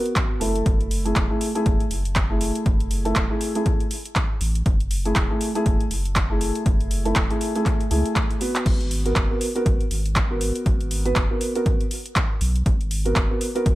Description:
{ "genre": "deep house", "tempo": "120 BPM", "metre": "4/4", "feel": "swing 58% on 16ths", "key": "unclear", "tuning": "A4 = 440 Hz", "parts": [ { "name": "felt-muted upright piano", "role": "stabs", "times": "0.0-13.8 s", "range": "A3 to B4", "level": "-25 LUFS", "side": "right 1 dB", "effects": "sidechain pumping, tape echo" }, { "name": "deep house drum kit", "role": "drums", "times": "0.1-13.8 s", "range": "crash cymbal, handclaps, hi-hat", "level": "-28 LUFS", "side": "equal", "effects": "overdrive, small room reverb" }, { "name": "electronic kick drum", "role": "drums", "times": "0.2-13.8 s", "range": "none", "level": "-22 LUFS", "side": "equal", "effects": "small room reverb" }, { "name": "warm sub bass", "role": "bass", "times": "0.4-13.8 s", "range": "E1 to C#2", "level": "-25 LUFS", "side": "equal", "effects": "sidechain pumping" } ], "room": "digital ambience", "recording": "none", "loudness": "-20 LUFS", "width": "side -17 dB against mid", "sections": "0.0-13.8 A section", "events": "drum fill 8.2-8.7", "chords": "0.4 F#m9; 8.7 G#m9" }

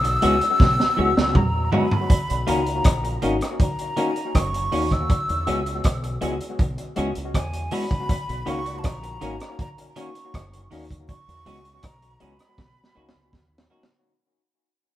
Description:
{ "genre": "lovers rock reggae", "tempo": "80 BPM", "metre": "4/4", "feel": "straight", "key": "B major", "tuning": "A4 = 440 Hz", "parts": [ { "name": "breathy mellow silver concert flute", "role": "melody", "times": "0.0-13.7 s", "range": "G#5 to E6", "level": "-26 LUFS", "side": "left 1 dB", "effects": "tape echo" }, { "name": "twelve-string electric guitar", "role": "stabs", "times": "0.0-13.9 s", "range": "D#3 to F#4", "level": "-30 LUFS", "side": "right 4 dB", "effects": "none" }, { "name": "deep dub fingered electric bass", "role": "bass", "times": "0.0-13.7 s", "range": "F#1 to E2", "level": "-29 LUFS", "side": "equal", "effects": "none" }, { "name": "crunchy breakbeat drum kit", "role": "drums", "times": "0.0-14.0 s", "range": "hi-hat, kick drum, rim click, snare drum, toms", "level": "-22 LUFS", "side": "equal", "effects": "none" }, { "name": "tine electric piano", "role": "accompaniment", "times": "0.2-13.8 s", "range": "G#3 to F#4", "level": "-28 LUFS", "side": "left 3 dB", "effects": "overdrive, tape echo" } ], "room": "moderate large studio reverb, RT60 0.9 s", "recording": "band playing live in one room", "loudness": "-20 LUFS", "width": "side -13 dB against mid", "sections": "0.0-14.1 A section", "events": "fade-out 0.0-14.1; drum fill 0.6-2.1, 12.6-14.1", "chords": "0.0 E6; 2.1 Bmaj9 (rootless); 5.1 E6; 8.1 Bmaj9 (rootless); 11.1 E6; 12.6 Bmaj7" }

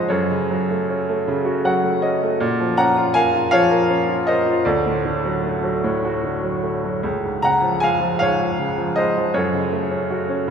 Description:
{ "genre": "classical, lyrical solo piano", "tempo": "52 BPM (dotted quarters)", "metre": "6/8", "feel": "uneven beats, rubato", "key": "unclear", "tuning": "A4 = 440 Hz", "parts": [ { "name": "bright baby grand piano", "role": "solo", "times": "0.0-10.5 s", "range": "Db2 to Bb5", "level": "-17 LUFS", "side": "equal", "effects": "none" } ], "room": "wet cathedral reverb, RT60 4.6 s", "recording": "recorded in a church or concert hall", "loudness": "-17 LUFS", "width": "side -7 dB against mid", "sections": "0.0-10.5 A section", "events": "grand piano fill 1.3-2.4", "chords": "0.1 Gbm; 2.4 Bbm; 4.7 D; 7.0 Db; 9.3 Gbm" }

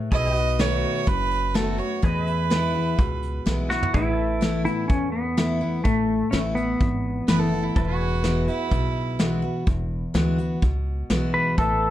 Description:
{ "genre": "honky-tonk and classic country", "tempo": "126 BPM", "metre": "4/4", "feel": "straight", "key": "A major", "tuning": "A4 = 440 Hz", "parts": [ { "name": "picked steel-string acoustic guitar", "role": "accompaniment", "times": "0.0-11.9 s", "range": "E2 to F#4", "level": "-26 LUFS", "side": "left 2 dB", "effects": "none" }, { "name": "pedal steel guitar", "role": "sustained chords", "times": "0.0-11.9 s", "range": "F#4 to E5", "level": "-34 LUFS", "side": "equal", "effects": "none" }, { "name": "clear fiddle", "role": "second line", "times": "0.1-3.5, 7.3-9.4 s", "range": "E4 to D#5", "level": "-27 LUFS", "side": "right 6 dB", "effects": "none" }, { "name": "upright bass", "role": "bass", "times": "0.1-11.9 s", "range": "E1 to E2", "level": "-28 LUFS", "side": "equal", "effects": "none" }, { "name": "vintage brush drum kit", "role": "drums", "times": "0.1-11.7 s", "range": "hi-hat, kick drum, snare drum, toms", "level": "-24 LUFS", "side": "equal", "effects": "none" }, { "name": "pedal steel guitar", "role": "melody", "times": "3.7-7.5, 11.3-11.9 s", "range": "A3 to B4", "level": "-24 LUFS", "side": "left 1 dB", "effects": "none" } ], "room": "light reverb", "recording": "dark, warm production", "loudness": "-21 LUFS", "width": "side -13 dB against mid", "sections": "0.0-3.9 A section; 3.9-11.9 B section", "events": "fiddle solo 0.0-3.9; drum fill 3.7", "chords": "0.1 B7; 2.0 E; 3.9 Asus2; 7.8 Eadd9" }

